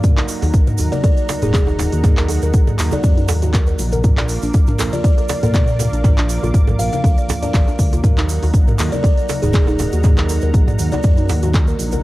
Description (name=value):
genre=afro house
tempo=120 BPM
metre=4/4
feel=swing 54% on 16ths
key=Eb harmonic minor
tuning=A4 = 438 Hz
part: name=warm analog pad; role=sustained chords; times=0.0-12.0 s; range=Eb4 to D6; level=-30 LUFS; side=equal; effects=chorus, sidechain pumping, cassette tape
part: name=bell-like tine electric piano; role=stabs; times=0.0-12.0 s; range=F3 to Bb4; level=-28 LUFS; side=right 7 dB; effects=auto-pan, sidechain pumping, cassette tape, tape echo
part: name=afro-pop drum kit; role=drums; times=0.0-12.0 s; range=handclaps, hi-hat, toms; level=-23 LUFS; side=equal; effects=cassette tape
part: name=electronic kick drum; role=drums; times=0.0-11.7 s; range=none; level=-14 LUFS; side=equal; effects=overdrive, cassette tape
part: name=congas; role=percussion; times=0.0-12.0 s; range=none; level=-28 LUFS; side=left 4 dB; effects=none
part: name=tube shaker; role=percussion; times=0.0-12.0 s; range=none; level=-33 LUFS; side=right 8 dB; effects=none
part: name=mallet-like synth pluck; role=arpeggios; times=0.2-12.0 s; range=D4 to D5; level=-29 LUFS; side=left 1 dB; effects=chorus, phaser, cassette tape, sidechain pumping, tape echo
part: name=djembe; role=percussion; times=0.2-12.0 s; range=none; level=-27 LUFS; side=right 3 dB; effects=none
part: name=dark detuned saw bass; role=bass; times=0.4-12.0 s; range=Eb1 to Bb2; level=-20 LUFS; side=equal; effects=sidechain pumping
part: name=buzzing kalimba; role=melody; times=0.9-11.4 s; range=Ab4 to F5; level=-26 LUFS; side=equal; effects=cassette tape, tape echo
room=little or no reverb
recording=home recording on cassette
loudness=-13 LUFS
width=side -18 dB against mid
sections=0.0-12.0 A section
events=none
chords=0.0 Ebm; 4.0 Bb; 8.0 Ebm